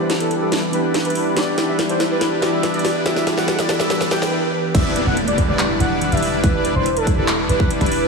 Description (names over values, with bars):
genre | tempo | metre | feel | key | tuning
future bass | 142 BPM | 4/4 | half-time | E minor | A4 = 440 Hz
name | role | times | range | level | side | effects
warm velvety synth lead | melody | 0.0-8.1 s | A4 to G5 | -24 LUFS | equal | chorus, sidechain pumping, tape echo
tine electric piano | accompaniment | 0.0-4.8 s | E3 to G4 | -25 LUFS | left 1 dB | medium tremolo, sidechain pumping, tape echo
airy breathy pad | sustained chords | 0.0-4.3 s | E3 to F#5 | -32 LUFS | right 4 dB | none
soft supersaw | riff | 0.0-8.1 s | G3 to D5 | -21 LUFS | equal | sidechain pumping, low-pass filter
warm 808-style bass | bass | 0.0-8.1 s | E1 | -24 LUFS | equal | sidechain pumping, high-pass filter
riser and downlifter | sound effects | 0.6-8.1 s | none | -27 LUFS | right 2 dB | none
trap drum kit | drums | 0.1-8.0 s | crash cymbal, handclaps, hi-hat, snare drum | -23 LUFS | equal | overdrive
electronic kick drum | drums | 4.7-7.9 s | none | -18 LUFS | equal | none
room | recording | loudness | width
moderate lush hall reverb, RT60 2.0 s | heavily compressed radio sound, multiband compression, studio reverb | -16 LUFS | side -4 dB against mid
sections
0.0-4.7 A section; 4.7-8.1 B section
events
build-up 0.0-4.7; drum fill 0.0-4.3; filter sweep on supersaw synth 0.0-4.7; stop 4.3-4.7; drop 4.7-8.1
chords
0.0 Em7